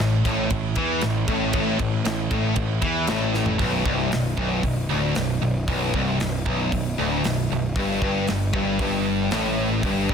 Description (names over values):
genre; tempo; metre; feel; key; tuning
heavy metal; 116 BPM; 4/4; straight; B minor; A4 = 436 Hz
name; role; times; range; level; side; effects
fuzz guitar; riff; 0.0-3.6 s; A2 to E3; -29 LUFS; equal; none
high-gain distorted guitar; riff; 0.0-10.1 s; B1 to E3; -26 LUFS; right 10 dB; distortion
sludgy distorted guitar; riff; 0.0-10.1 s; B1 to E3; -25 LUFS; left 8 dB; overdrive
fuzz picked electric bass; bass; 0.0-10.1 s; B0 to E2; -28 LUFS; equal; overdrive
modern studio drum kit; drums; 0.0-10.1 s; hi-hat, kick drum, ride cymbal, snare drum, toms; -29 LUFS; equal; none
room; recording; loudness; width
light reverb, small room ambience; dense, heavily limited modern master; -20 LUFS; side -7 dB against mid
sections
0.0-3.6 A section; 3.6-10.1 B section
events
drum fill 3.4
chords
0.0 A5; 3.6 Bm; 7.8 Gsus2